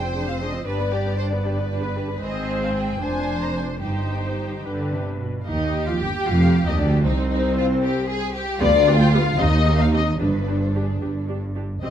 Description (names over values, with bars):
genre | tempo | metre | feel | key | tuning
quick classical-period movement for string orchestra | 76 BPM (dotted quarters) | 6/8 | straight | unclear | A4 = 440 Hz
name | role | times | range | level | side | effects
muted studio violin section | melody | 0.0-11.9 s | Ab4 to Bb5 | -26 LUFS | left 6 dB | none
muted studio violin section | second line | 0.0-11.4 s | D4 to C5 | -28 LUFS | left 1 dB | none
muted studio viola section | accompaniment | 0.0-11.9 s | B3 to C5 | -28 LUFS | right 1 dB | none
muted studio cello section | bass | 0.0-11.9 s | C2 to D3 | -24 LUFS | right 1 dB | none
muted studio double bass section | bass | 0.0-11.9 s | F1 to Eb2 | -25 LUFS | right 2 dB | none
room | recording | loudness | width
light reverb | close, detailed microphones | -19 LUFS | side -9 dB against mid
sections
0.0-5.5 A section; 5.5-11.9 B section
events
none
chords
0.0 Dm7b5/F; 0.7 G; 2.2 Ab; 3.0 Dm7b5/F; 3.8 Cm/G; 4.7 G; 5.5 Ebmaj9; 7.0 Cm; 8.6 G7/D; 9.4 Cm/Eb; 10.2 G5